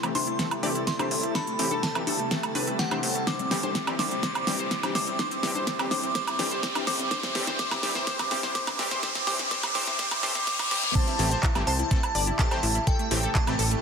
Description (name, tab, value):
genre	progressive house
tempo	125 BPM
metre	4/4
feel	straight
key	A minor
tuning	A4 = 444 Hz
part	glassy synth bell	melody	0.0-13.8 s	F#5 to D6	-31 LUFS	right 1 dB	chorus, sidechain pumping, ping-pong delay
part	shimmering ambient pad	sustained chords	0.0-13.8 s	C3 to A4	-36 LUFS	equal	chorus, built-in reverb, sidechain pumping
part	analog pluck	arpeggios	0.0-13.8 s	A3 to D5	-34 LUFS	left 2 dB	chorus, cassette tape, sidechain pumping, ping-pong delay
part	supersaw stab	stabs	0.0-13.5 s	E3 to A4	-34 LUFS	left 2 dB	vintage 12-bit sampler grit, sidechain pumping, low-pass filter, ping-pong delay
part	plucky analog bass	bass	0.0-13.8 s	G1 to A2	-33 LUFS	equal	sidechain pumping, high-pass filter
part	pop drum kit	drums	0.0-13.8 s	crash cymbal, handclaps, hi-hat, snare drum, woodblock	-30 LUFS	right 1 dB	none
part	riser and reverse cymbal	sound effects	1.2-11.0 s	none	-33 LUFS	equal	none
part	drifting glass-harmonics texture	texture	0.0-11.0 s	G4 to A6	-41 LUFS	right 1 dB	chorus, built-in reverb, sidechain pumping
part	congas	percussion	0.2-10.7 s	none	-38 LUFS	left 7 dB	overdrive, sidechain pumping on perc
part	electronic kick drum	drums	0.4-13.4 s	none	-26 LUFS	equal	high-pass filter on kick
part	airy dreamy lead	second line	10.9-13.8 s	G5 to A5	-35 LUFS	equal	chorus, sidechain pumping, ping-pong delay
room	moderate lush hall reverb, RT60 1.9 s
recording	dense, heavily limited modern master, high-pass filter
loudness	-24 LUFS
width	side -6 dB against mid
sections	0.0-11.0 A section; 11.0-13.8 B section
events	build-up 0.0-11.0; drum fill 0.0-11.0; filter sweep on supersaw synth 0.0-11.0; filter sweep on ambient pad 0.0-11.0; filter sweep 0.0-11.0; riser 1.2-11.0; reverse cymbal 10.0-11.0; drop 11.0-13.8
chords	0.0 Am7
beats	0.39 0.87 | 1.35 1.83 2.31 2.79 | 3.27 3.75 4.23 4.71 | 5.19 5.67 6.15 6.63 | 7.11 7.59 8.07 8.55 | 9.03 9.51 9.99 10.47 | 10.95 11.43 11.91 12.39 | 12.87 13.35